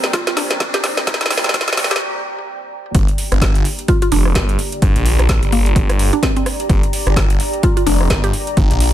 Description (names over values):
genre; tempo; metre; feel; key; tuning
bass house; 128 BPM; 4/4; swing 58% on 16ths; G minor; A4 = 440 Hz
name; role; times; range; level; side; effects
sweeping resonant pad; sustained chords; 0.0-8.9 s; Bb2 to G4; -35 LUFS; right 3 dB; none
garage drum kit; drums; 0.0-8.9 s; hi-hat, rim click, snare drum; -20 LUFS; equal; overdrive, studio reverb
riser; sound effects; 0.0-2.0 s; none; -26 LUFS; equal; none
deep dark ambient pad; texture; 0.0-8.9 s; G4 to Bb5; -26 LUFS; equal; chorus, built-in reverb, sidechain pumping
mallet-like synth pluck; melody; 0.1-8.4 s; Bb3 to G4; -22 LUFS; equal; chorus, ping-pong delay
electronic kick drum; drums; 0.1-8.7 s; none; -17 LUFS; equal; studio reverb
phased detuned saw bass; bass; 2.9-8.9 s; F1 to Bb1; -16 LUFS; equal; phaser, sidechain pumping
room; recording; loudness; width
digital ambience; high-pass filter; -14 LUFS; side -12 dB against mid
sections
0.0-2.9 A section; 2.9-8.9 B section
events
build-up 0.0-2.9; drum fill 0.0-2.0; riser 0.0-2.0; filter sweep 0.0-2.9; break 2.0-2.9; drop 2.9-8.9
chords
0.0 Gm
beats
0.13 0.60 | 1.07 1.54 2.01 2.48 | 2.95 3.42 3.88 4.35 | 4.82 5.29 5.76 6.23 | 6.70 7.17 7.63 8.10 | 8.57